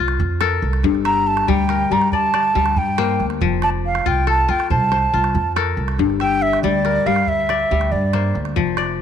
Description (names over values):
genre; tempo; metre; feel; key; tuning
west african traditional, West African string and xylophone music; 93 BPM (dotted quarters); 12/8; straight; G dorian; A4 = 440 Hz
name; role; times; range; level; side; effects
kora; arpeggios; 0.0-9.0 s; G2 to E5; -21 LUFS; left 11 dB; none
upright bass; bass; 0.0-9.0 s; F1 to G2; -22 LUFS; right 2 dB; none
calabash; percussion; 0.1-8.9 s; none; -28 LUFS; right 7 dB; none
breathy mellow silver concert flute; melody; 1.1-8.4 s; D5 to Bb5; -19 LUFS; right 2 dB; none
room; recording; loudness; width
light reverb; 1960s-style stereo with parts hard left and right; -16 LUFS; side -8 dB against mid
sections
0.0-9.0 A section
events
none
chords
0.0 F; 0.8 Gm; 3.4 F; 6.0 Gm